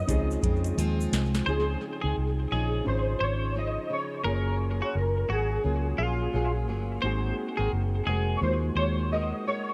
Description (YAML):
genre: indie pop, bedroom pop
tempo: 86 BPM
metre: 4/4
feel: swing 60% on 16ths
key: Db major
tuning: A4 = 445 Hz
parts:
  - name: warbly lo-fi synth keys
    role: melody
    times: 0.0-9.7 s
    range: Ab4 to Eb5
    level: -35 LUFS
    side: equal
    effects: ensemble chorus, tape echo
  - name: flamenco guitar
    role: accompaniment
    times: 0.0-9.7 s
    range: Db3 to Bb4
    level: -37 LUFS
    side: equal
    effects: lush chorus, warbly pitch drift, tape echo
  - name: mellow reed electric piano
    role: accompaniment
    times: 0.0-9.7 s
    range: Ab3 to Ab4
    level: -39 LUFS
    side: equal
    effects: fast tremolo, cassette tape
  - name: vintage muted fingered electric bass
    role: bass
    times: 0.1-9.3 s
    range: F1 to F2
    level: -31 LUFS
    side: equal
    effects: none
  - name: soft vintage rhythm box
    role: drums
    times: 0.1-1.5 s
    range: hi-hat, kick drum, snare drum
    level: -33 LUFS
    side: equal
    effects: tape echo
  - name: tube shaker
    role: percussion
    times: 0.1-1.5 s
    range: none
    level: -48 LUFS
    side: equal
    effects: tape echo
  - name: twelve-string electric guitar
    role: second line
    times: 1.5-9.1 s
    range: F4 to C5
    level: -36 LUFS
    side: equal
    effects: analog chorus, tape echo
room: light reverb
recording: echo-heavy mix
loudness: -28 LUFS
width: mono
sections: 0.0-1.5 A section; 1.5-9.7 B section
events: synth keys solo 0.0-1.5; drum fill 0.8-1.5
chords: 0.1 Dbmaj7; 1.5 Dbmaj9; 4.3 Gbmaj9; 7.0 Ab9